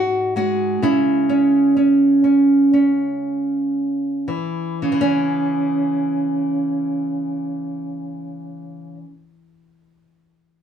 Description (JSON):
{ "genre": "folk, solo fingerstyle acoustic guitar", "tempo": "54-68 BPM", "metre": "4/4", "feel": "rubato", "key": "C# minor", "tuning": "A4 = 444 Hz", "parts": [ { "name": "nylon-string guitar", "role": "solo", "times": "0.0-9.1 s", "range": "G#2 to G#4", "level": "-17 LUFS", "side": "right 1 dB", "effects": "none" } ], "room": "wet studio reverb, RT60 0.7 s", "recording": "heard from further back in the room", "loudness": "-16 LUFS", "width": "side -8 dB against mid", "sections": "0.0-4.8 A section; 4.8-9.1 B section", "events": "slowing down 0.0-4.8", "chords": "0.0 G#7(no3); 0.8 C#m", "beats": "| 0.82 1.75 2.72 3.74 | 4.81 5.88 6.93 7.98" }